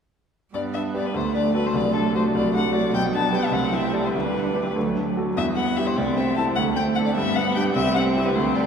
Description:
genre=quick classical-period movement for piano quintet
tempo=100 BPM (dotted quarters)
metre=6/8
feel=straight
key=G major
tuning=A4 = 440 Hz
part: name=warm violin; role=melody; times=0.5-8.7 s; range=A4 to A5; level=-26 LUFS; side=left 4 dB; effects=none
part: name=warm cello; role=second line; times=0.5-8.7 s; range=F#3 to A3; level=-27 LUFS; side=right 5 dB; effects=none
part: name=bright grand piano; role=accompaniment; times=0.5-8.7 s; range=B1 to B4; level=-25 LUFS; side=left 1 dB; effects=none
part: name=warm viola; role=accompaniment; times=0.5-8.7 s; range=A3 to D4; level=-26 LUFS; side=right 2 dB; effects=none
room=wet cathedral reverb, RT60 5.3 s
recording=lossy compression artefacts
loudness=-20 LUFS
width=side -7 dB against mid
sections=0.5-8.7 A section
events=none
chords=0.5 G; 1.2 D; 1.8 D7/C; 2.9 G/B; 3.5 Am7/C; 4.1 G/D; 4.8 D; 5.4 Em; 6.0 Am/C; 6.6 D5; 7.2 G; 7.8 C

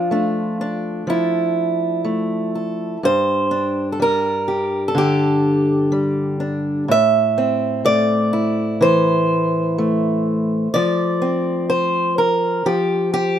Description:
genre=folk, solo fingerstyle acoustic guitar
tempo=62 BPM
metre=4/4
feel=straight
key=unclear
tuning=A4 = 439 Hz
part: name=fingerpicked acoustic archtop guitar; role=solo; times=0.0-13.4 s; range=G2 to E5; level=-16 LUFS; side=equal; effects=none
room=light reverb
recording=minimal, uncompressed stereo recording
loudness=-16 LUFS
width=side -10 dB against mid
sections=0.0-13.4 A section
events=none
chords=0.0 F6; 3.0 Gm; 6.9 Am; 10.7 Fsus2

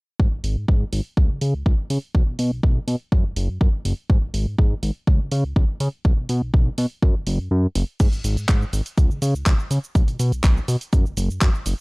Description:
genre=filtered disco house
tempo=123 BPM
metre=4/4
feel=straight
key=G# minor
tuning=A4 = 440 Hz
part: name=fat analog bass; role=bass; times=0.2-11.7 s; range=F#1 to C#3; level=-22 LUFS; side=equal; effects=sidechain pumping, low-pass filter
part: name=electronic kick drum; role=drums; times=0.2-11.5 s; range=none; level=-17 LUFS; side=equal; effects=none
part: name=house drum kit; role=drums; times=0.4-11.8 s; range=crash cymbal, handclaps, hi-hat, shaker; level=-30 LUFS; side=right 1 dB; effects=sidechain pumping on hats, sidechain pumping on cymbals, sidechain pumping on perc
room=little or no reverb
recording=dry, gritty hardware recording, transformer saturation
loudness=-18 LUFS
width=side -30 dB against mid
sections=0.2-8.0 A section; 8.0-11.8 B section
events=filter sweep on analog synth bass 0.2-8.0; kick drops out 7.5-8.0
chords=none

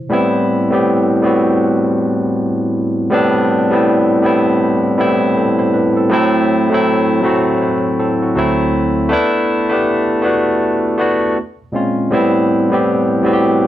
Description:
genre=R&B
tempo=80 BPM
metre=4/4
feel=swing 60% on 16ths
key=A dorian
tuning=A4 = 440 Hz
part: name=barky tine electric piano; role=solo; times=0.0-13.7 s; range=D2 to C5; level=-12 LUFS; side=equal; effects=none
room=moderate studio reverb, RT60 0.6 s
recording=band playing live in one room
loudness=-12 LUFS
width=side -12 dB against mid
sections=0.1-13.7 A section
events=none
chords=0.1 Am9; 6.1 Am6; 8.4 D9; 9.1 G69/A; 11.4 Bbm9; 12.1 Am9

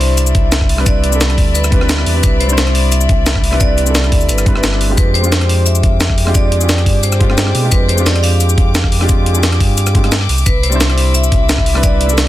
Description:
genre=liquid drum and bass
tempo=175 BPM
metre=4/4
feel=straight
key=C major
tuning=A4 = 441 Hz
part: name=vibraphone with hard mallets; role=melody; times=0.0-12.3 s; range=B4 to F5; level=-21 LUFS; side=left 2 dB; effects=tape echo
part: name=dark grand piano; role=accompaniment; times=0.0-12.3 s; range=G3 to C5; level=-20 LUFS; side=right 1 dB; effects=dub echo
part: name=rich chamber string section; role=sustained chords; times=0.0-12.3 s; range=D5 to D6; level=-25 LUFS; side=left 4 dB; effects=none
part: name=sub bass with octave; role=bass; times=0.0-12.3 s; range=G1 to B2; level=-14 LUFS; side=equal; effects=none
part: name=jungle sampler-style drum kit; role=drums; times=0.0-12.2 s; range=cabasa, hi-hat, rim click, snare drum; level=-17 LUFS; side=equal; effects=none
part: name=electronic kick drum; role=drums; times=0.3-11.9 s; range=none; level=-14 LUFS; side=equal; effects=none
room=digital ambience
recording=dense, heavily limited modern master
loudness=-10 LUFS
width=side -14 dB against mid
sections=0.0-12.3 A section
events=none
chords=0.0 Cmaj9; 5.0 Fm6; 10.5 Cmaj9

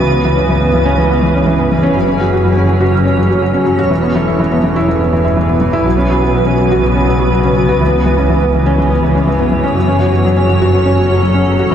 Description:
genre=electronica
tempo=123 BPM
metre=4/4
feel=straight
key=F# minor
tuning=A4 = 440 Hz
part: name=granular cloud pad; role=sustained chords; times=0.0-11.7 s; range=C#3 to C#5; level=-16 LUFS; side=right 1 dB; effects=built-in reverb, lush chorus
part: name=felt-muted upright piano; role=riff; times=0.0-11.7 s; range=E3 to F#4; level=-13 LUFS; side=equal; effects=analog delay
part: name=warm symphonic double bass section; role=bass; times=0.0-11.7 s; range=E1 to C#2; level=-16 LUFS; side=equal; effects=tube saturation
room=wet huge ambient reverb, RT60 8.0 s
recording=dreamy mix soaked in reverb, lossy compression artefacts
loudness=-10 LUFS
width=side -9 dB against mid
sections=0.0-11.7 A section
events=none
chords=0.0 C#m7; 2.0 F#m; 3.9 E; 5.9 Bsus2; 7.8 C#m7; 9.8 F#m

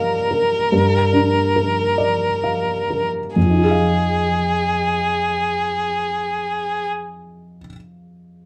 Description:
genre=neoclassical piano and strings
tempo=43-51 BPM (dotted quarters)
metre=6/8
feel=rubato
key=F dorian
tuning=A4 = 440 Hz
part: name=rich violin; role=melody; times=0.0-6.9 s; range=Ab4 to Bb4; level=-22 LUFS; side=equal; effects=none
part: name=dark baby grand piano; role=accompaniment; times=0.0-8.5 s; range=F2 to F5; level=-22 LUFS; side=equal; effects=none
room=light reverb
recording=dark, warm production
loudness=-19 LUFS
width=mono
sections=0.0-3.4 A section; 3.4-6.1 B section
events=slowing down 0.0-3.4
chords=0.0 Gm7; 3.4 Fm7

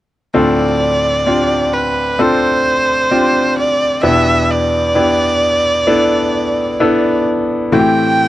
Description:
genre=pop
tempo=65 BPM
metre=4/4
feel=straight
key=unclear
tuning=A4 = 439 Hz
part: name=bright concert grand piano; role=accompaniment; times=0.3-8.3 s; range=D2 to A4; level=-14 LUFS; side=left 1 dB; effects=none
part: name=rich erhu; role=melody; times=0.4-8.3 s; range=B4 to G5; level=-15 LUFS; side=right 1 dB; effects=none
room=light reverb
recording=dry, close 1970s-style studio recording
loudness=-11 LUFS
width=side -14 dB against mid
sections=0.3-8.3 A section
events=none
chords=0.3 Dm7; 4.0 Em7; 7.7 Am7

